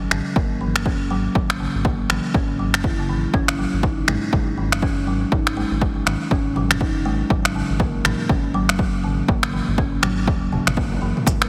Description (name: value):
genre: afro house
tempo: 121 BPM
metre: 4/4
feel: swing 59% on 16ths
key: unclear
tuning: A4 = 442 Hz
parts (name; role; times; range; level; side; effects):
- round analog bass; bass; 0.0-11.5 s; D#1 to G#1; -29 LUFS; equal; sidechain pumping
- kalimba; arpeggios; 0.1-11.4 s; C#3 to E4; -26 LUFS; equal; sidechain pumping, digital delay
- house drum kit; drums; 0.1-11.5 s; finger snaps, toms; -26 LUFS; equal; overdrive
- electronic kick drum; drums; 0.4-11.4 s; none; -24 LUFS; equal; overdrive
- ethereal airy pad; sustained chords; 11.4-11.5 s; G#3 to B4; -38 LUFS; equal; ensemble chorus, built-in reverb, sidechain pumping
- cabasa; percussion; 11.3-11.4 s; none; -31 LUFS; equal; none
- congas; percussion; 11.3-11.4 s; none; -28 LUFS; equal; none
room: light reverb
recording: heavily compressed radio sound, multiband compression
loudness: -21 LUFS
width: mono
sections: 0.0-11.5 A section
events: drum fill 10.8-11.3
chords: 0.0 F#7(no3); 3.3 G#5; 7.3 F#5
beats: 0.36 0.86 | 1.35 1.85 2.35 2.84 | 3.34 3.83 4.33 4.82 | 5.32 5.82 6.31 6.81 | 7.30 7.80 8.29 8.79 | 9.29 9.78 10.28 10.77 | 11.27